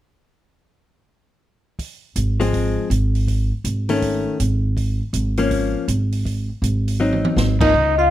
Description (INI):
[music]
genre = jazz, small-group swing and bop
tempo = 161 BPM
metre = 4/4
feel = swing 64% on 8ths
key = unclear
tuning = A4 = 440 Hz
[part]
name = open jazz drum kit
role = drums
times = 1.8-7.8 s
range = crash cymbal, hi-hat, kick drum, snare drum, toms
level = -26 LUFS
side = right 1 dB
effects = none
[part]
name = upright bass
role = bass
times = 2.2-8.1 s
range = Ab1 to Db2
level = -20 LUFS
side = right 1 dB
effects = none
[part]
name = hollow-body jazz guitar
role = accompaniment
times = 2.4-7.7 s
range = D#3 to Eb4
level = -21 LUFS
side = left 3 dB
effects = none
[part]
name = vibraphone with soft mallets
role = melody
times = 7.6-8.1 s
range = Eb5 to F5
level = -16 LUFS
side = left 4 dB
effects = none
[part]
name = warm trumpet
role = second line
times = 7.6-8.1 s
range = Eb4 to F4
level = -19 LUFS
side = right 5 dB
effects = none
[sound]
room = light reverb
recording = none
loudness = -17 LUFS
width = side -13 dB against mid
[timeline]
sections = 1.8-7.7 A section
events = drum fill 7.0-7.4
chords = 1.8 Ab6; 3.3 Amaj7#11/G#; 4.8 Bbm7/Ab; 6.3 Ab7